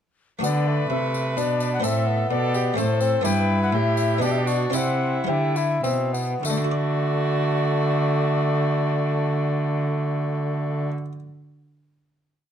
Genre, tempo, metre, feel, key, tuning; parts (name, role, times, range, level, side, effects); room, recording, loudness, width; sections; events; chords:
classical, renaissance-style consort dance; 97-129 BPM; 3/4; straight; D mixolydian; A4 = 443 Hz
mellow tenor recorder; melody; 0.4-10.9 s; C5 to G5; -28 LUFS; left 8 dB
warm violin; second line; 0.4-10.9 s; E4 to B4; -30 LUFS; right 5 dB
buff-stop harpsichord; accompaniment; 0.4-11.2 s; G2 to D5; -30 LUFS; left 1 dB
clear bassoon; accompaniment; 0.4-10.9 s; A3 to G4; -27 LUFS; left 2 dB
rich cello; bass; 0.4-10.9 s; G2 to D3; -24 LUFS; right 2 dB
tambourine; percussion; 0.4-6.7 s; -36 LUFS; left 4 dB
light reverb; dark, warm production; -20 LUFS; side -9 dB against mid
0.4-6.4 A section; 6.4-10.1 final chord
slowing down 2.5-6.4
0.4 D; 1.8 Am; 3.2 G; 4.7 C; 6.4 D